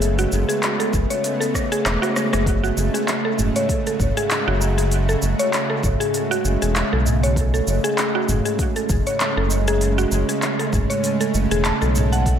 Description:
organic downtempo; 98 BPM; 4/4; swing 56% on 16ths; F# minor; A4 = 440 Hz
bowed-like drone; sustained chords; 0.0-12.4 s; C#3 to F#4; -24 LUFS; right 2 dB; built-in reverb, sidechain pumping
mallet-like synth pluck; arpeggios; 0.0-12.3 s; F#4 to A5; -24 LUFS; left 1 dB; chorus, cassette tape, dub echo
round analog bass; bass; 0.0-12.4 s; E1 to B1; -20 LUFS; equal
organic electronic drum kit; drums; 0.0-12.4 s; handclaps, hi-hat, rim click, shaker; -26 LUFS; equal; overdrive
electronic kick drum; drums; 0.9-12.4 s; -23 LUFS; equal; overdrive
tabla; percussion; 2.5-12.4 s; -31 LUFS; right 2 dB; dub echo
moderate spring reverb, RT60 1.8 s; echo-heavy mix; -18 LUFS; side -9 dB against mid
0.0-12.4 A section
drum fill 1.5-2.5
0.0 F#madd9

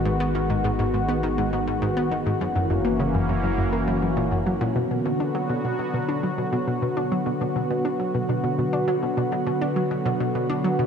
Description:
ambient, sequencer-driven space music; 102 BPM; 4/4; straight; B minor from 4.8 s; A4 = 439 Hz
sweeping resonant pad; sustained chords; 0.0-10.9 s; D3 to F#4; -24 LUFS; equal; chorus, shimmer reverb
round analog bass; bass; 0.0-4.7 s; F#1 to G#1; -32 LUFS; equal
analog pluck; riff; 0.1-10.9 s; F#2 to D4; -26 LUFS; equal; chorus, ping-pong delay
wet plate reverb, RT60 3.4 s; echo-heavy mix; -22 LUFS; side -7 dB against mid
0.0-4.8 A section; 4.8-10.9 B section
0.0 G#m; 2.4 F#7; 4.8 Bm

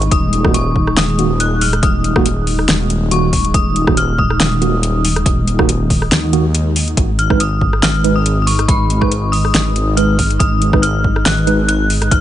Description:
deep dubstep; 140 BPM; 4/4; swing 55% on 16ths, half-time; G# dorian; A4 = 440 Hz
dark detuned synth bell; melody; 0.0-12.2 s; B5 to F#6; -20 LUFS; left 2 dB; chorus, dub echo
dark analog pad; sustained chords; 0.0-12.2 s; G#3 to D#4; -23 LUFS; equal; chorus, vintage 12-bit sampler grit
deep soft wobble bass; bass; 0.0-12.2 s; D#1 to D#2; -16 LUFS; equal; chorus, tube saturation
deep house drum kit; drums; 0.0-12.2 s; hi-hat, rim click, snare drum; -18 LUFS; left 1 dB; overdrive, studio ambience
electronic kick drum; drums; 0.1-12.2 s; -17 LUFS; equal; overdrive, studio ambience
mellow tine electric piano; stabs; 0.4-11.6 s; D#3 to B4; -21 LUFS; right 5 dB; medium stereo tremolo, dub echo
little or no reverb; nothing above 10.3 kHz; -12 LUFS; side -12 dB against mid
0.0-12.2 A section
break 6.5-7.0
0.1 D#m; 7.0 G#m

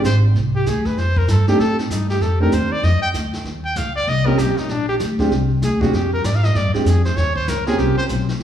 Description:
jazz, small-group swing and bop; 194 BPM; 4/4; swing 62% on 8ths; A4 = 440 Hz
warm baby grand piano; accompaniment; 0.0-8.1 s; Bb2 to G4; -22 LUFS; right 2 dB
upright bass; bass; 0.0-8.4 s; Ab1 to A2; -18 LUFS; equal
jazz brush drum kit; drums; 0.0-8.4 s; brushed snare drum, hi-hat, kick drum, snare drum; -28 LUFS; equal
warm trumpet; melody; 0.1-8.0 s; C4 to G5; -22 LUFS; equal
wet large studio reverb, RT60 1.3 s; heard from further back in the room; -16 LUFS; side -10 dB against mid
0.0-5.9 A section; 5.9-8.4 A section
trumpet solo 0.0-8.4
0.0 Bb9 (rootless); 1.0 F13; 3.5 Eb13; 4.7 Bb13; 5.9 Ddim; 7.2 Eb13

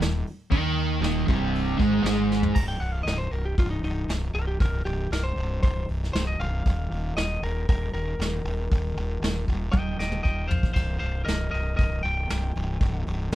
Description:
blues rock power trio and southern rock; 117 BPM; 4/4; straight; A4 = 440 Hz
overdriven semi-hollow guitar; riff; 0.0-2.5 s; C2 to Eb4; -23 LUFS; right 2 dB
fuzz fingered electric bass; bass; 0.0-13.3 s; C1 to Eb2; -28 LUFS; equal; overdrive
vintage brush drum kit; drums; 0.0-13.3 s; crash cymbal, hi-hat, kick drum, snare drum, splash cymbal, toms; -26 LUFS; equal
lightly driven lead guitar; melody; 2.5-13.0 s; Eb4 to Bb5; -32 LUFS; left 1 dB
light reverb; band playing live in one room; -23 LUFS; side -14 dB against mid
0.0-2.6 A section; 2.6-13.3 B section
drum fill 2.3, 9.7-10.8; lead electric guitar solo 2.6-13.3
0.0 Ab; 2.6 N.C.; 6.7 Eb5; 10.8 C5

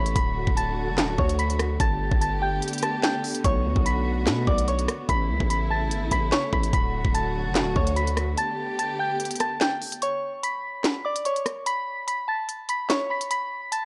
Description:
hip hop, drill; 146 BPM; 4/4; half-time; A4 = 440 Hz
soft synth bell; melody; 0.0-13.8 s; C#5 to B6; -29 LUFS; equal; chorus, low-pass filter
warm studio string section; sustained chords; 0.0-10.0 s; C#3 to G4; -34 LUFS; equal
distorted 808-style bass; bass; 0.0-8.4 s; D1 to B2; -29 LUFS; equal; distortion
drill drum kit; drums; 0.1-13.8 s; handclaps, hi-hat, kick drum, rim click, snare drum; -28 LUFS; equal; vintage 12-bit sampler grit
digital ambience; dry, gritty hardware recording, cassette tape; -25 LUFS; mono
0.0-10.0 A section; 10.0-13.8 B section
break 2.6-3.4, 8.4-10.0, 10.0-13.8
0.2 D; 1.8 Gadd9; 3.4 Bm7; 5.1 Aadd9; 6.7 D; 8.4 Gadd9; 10.0 N.C.; 11.7 Asus2

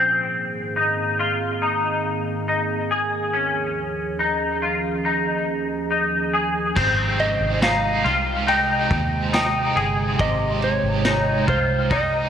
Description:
dream pop; 70 BPM; 4/4; straight; Ab major; A4 = 438 Hz
warbly tape-like pad; sustained chords; 0.0-12.3 s; Eb2 to G5; -26 LUFS; right 2 dB; chorus, built-in reverb, low-pass filter
clean electric guitar; arpeggios; 0.0-12.3 s; C3 to Ab4; -22 LUFS; left 3 dB; ensemble chorus, low-pass filter, digital delay
overdriven electric guitar; accompaniment; 6.8-12.3 s; Ab3 to G4; -29 LUFS; right 6 dB; tremolo, wide subtle chorus
vintage muted fingered electric bass; bass; 6.8-12.3 s; G1 to Eb2; -26 LUFS; equal
vintage drum kit; drums; 6.8-12.1 s; crash cymbal, kick drum, ride cymbal, snare drum, tambourine; -27 LUFS; equal
electric slide guitar; melody; 7.2-12.3 s; C5 to G5; -24 LUFS; right 2 dB; digital delay
moderate plate reverb, RT60 3.2 s; -19 LUFS; side -8 dB against mid
0.0-6.8 A section; 6.8-12.3 B section
0.0 Abadd9; 3.3 Eb7sus4; 6.8 Abmaj7

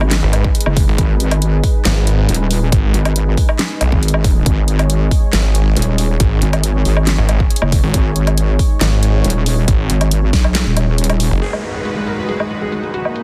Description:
heavy wobble dubstep; 138 BPM; 4/4; half-time; G# minor; A4 = 438 Hz
supersaw pad; sustained chords; 0.0-13.2 s; A#2 to C#5; -28 LUFS; equal; sidechain pumping, low-pass filter
wobble bass; bass; 0.0-11.3 s; D#1 to B1; -17 LUFS; equal; chorus, overdrive
dubstep drum kit; drums; 0.0-13.2 s; handclaps, hi-hat, snare drum, woodblock; -23 LUFS; equal; low-pass filter on hats, low-pass filter on perc, low-pass filter on snare, low-pass filter on room
snarling distorted saw bass; bass; 0.2-11.4 s; F#1 to B1; -17 LUFS; equal; distortion, overdrive
electronic kick drum; drums; 0.4-10.4 s; -17 LUFS; equal
warm concert grand piano; melody; 11.4-13.2 s; G#3 to A#4; -26 LUFS; equal; dub echo
downlifter; sound effects; 11.4-13.2 s; -28 LUFS; equal
little or no reverb; dense, heavily limited modern master; -15 LUFS; mono
0.0-11.4 A section; 11.4-13.2 B section
drop 0.0-11.4; kick drops out 10.5-11.4
0.0 G#m; 11.4 G#m7

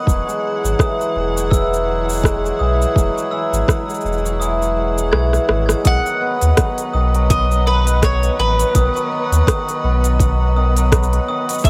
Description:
folktronica; 83 BPM; 4/4; swing 56% on 16ths; A4 = 440 Hz
dark string quartet; sustained chords; 0.0-11.7 s; E3 to F#5; -31 LUFS; equal
cimbalom; arpeggios; 0.0-11.7 s; D#3 to B3; -23 LUFS; equal; digital delay
warm sub bass; bass; 0.1-11.7 s; E1 to D#2; -20 LUFS; equal
electronic kick drum; drums; 0.1-11.7 s; -19 LUFS; equal; overdrive
organic electronic drum kit; drums; 0.1-11.7 s; cabasa, hi-hat, rim click; -24 LUFS; equal; overdrive
glockenspiel with hard plastic mallets; second line; 0.8-11.5 s; D#6 to G#6; -28 LUFS; equal; digital delay
mandolin; melody; 5.9-11.7 s; B4 to F#5; -24 LUFS; equal; digital delay
small room ambience; -17 LUFS; mono
0.0-5.9 A section; 5.9-11.7 B section
kick drops out 4.4-5.9; drum fill 5.3-5.9
0.1 Eadd9; 5.9 B

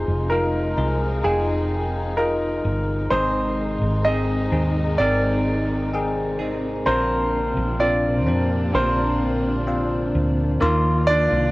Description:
pop ballad; 64 BPM; 4/4; straight; A4 = 438 Hz
clear concert grand piano; melody; 0.0-11.5 s; D4 to Eb5; -24 LUFS; right 1 dB
bell-like tine electric piano; accompaniment; 0.0-11.5 s; Ab2 to G5; -24 LUFS; left 2 dB; phaser
warm studio string section; sustained chords; 0.0-11.5 s; C3 to F4; -31 LUFS; left 1 dB
woody fretless electric bass; bass; 0.0-11.5 s; F1 to F2; -24 LUFS; equal
direct-recorded clean electric guitar; arpeggios; 3.1-11.5 s; Ab2 to Ab4; -30 LUFS; right 3 dB; slapback echo
moderate spring reverb, RT60 2.7 s; worn, warbling old tape, cassette tape, warbly pitch drift; -19 LUFS; side -20 dB against mid
0.0-10.6 A section
0.0 Fm7; 3.1 Ab; 6.9 Bbadd9; 10.6 Ebsus2

